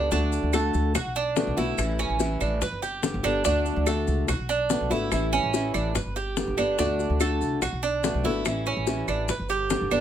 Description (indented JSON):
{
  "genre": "latin, Cuban son and guajira",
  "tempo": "144 BPM",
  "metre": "4/4",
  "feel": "straight",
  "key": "D major",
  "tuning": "A4 = 439 Hz",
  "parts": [
    { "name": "flamenco guitar", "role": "accompaniment", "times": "0.0-10.0 s", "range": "D3 to G4", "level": "-28 LUFS", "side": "left 3 dB", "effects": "none" },
    { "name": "Cuban tres", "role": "arpeggios", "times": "0.0-10.0 s", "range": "C#4 to B4", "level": "-27 LUFS", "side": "right 5 dB", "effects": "none" },
    { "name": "upright bass", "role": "bass", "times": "0.0-10.0 s", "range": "G1 to D2", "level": "-29 LUFS", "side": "equal", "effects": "none" },
    { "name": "bongos", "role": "percussion", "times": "0.1-9.9 s", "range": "none", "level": "-31 LUFS", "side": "left 7 dB", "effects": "none" },
    { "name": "maracas", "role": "percussion", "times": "0.1-10.0 s", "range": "none", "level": "-37 LUFS", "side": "left 8 dB", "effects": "none" },
    { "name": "claves", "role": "percussion", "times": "0.5-10.0 s", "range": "none", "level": "-35 LUFS", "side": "right 6 dB", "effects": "none" }
  ],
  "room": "light reverb",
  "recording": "none",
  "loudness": "-23 LUFS",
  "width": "side -10 dB against mid",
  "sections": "0.1-10.0 A section",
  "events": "none",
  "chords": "0.1 D; 0.9 Bm7; 1.8 A7; 2.6 G; 3.5 D; 4.3 Bm7; 5.1 A7; 6.0 G; 6.8 D; 7.6 Bm7; 8.5 A7; 9.3 G"
}